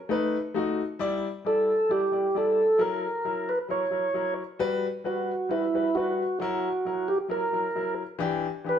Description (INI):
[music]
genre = soul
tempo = 133 BPM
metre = 4/4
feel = straight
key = unclear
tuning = A4 = 439 Hz
[part]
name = clear upright piano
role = accompaniment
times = 0.1-8.8 s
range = E3 to D5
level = -30 LUFS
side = left 4 dB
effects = none
[part]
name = tonewheel organ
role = melody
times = 1.5-8.8 s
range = E4 to C#5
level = -25 LUFS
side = right 2 dB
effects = slow rotary speaker, slapback echo
[sound]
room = moderate stone room reverb, RT60 1.1 s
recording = band playing live in one room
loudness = -24 LUFS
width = side -8 dB against mid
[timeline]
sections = 0.0-1.0 A section; 1.0-8.8 B section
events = none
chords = 0.1 B7; 1.0 Em7; 2.8 F#7; 4.6 Gmaj7; 6.4 F#7; 8.2 Em7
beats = 0.10 0.55 | 1.00 1.45 1.90 2.35 | 2.80 3.25 3.70 4.15 | 4.60 5.05 5.50 5.95 | 6.40 6.85 7.30 7.75 | 8.20 8.65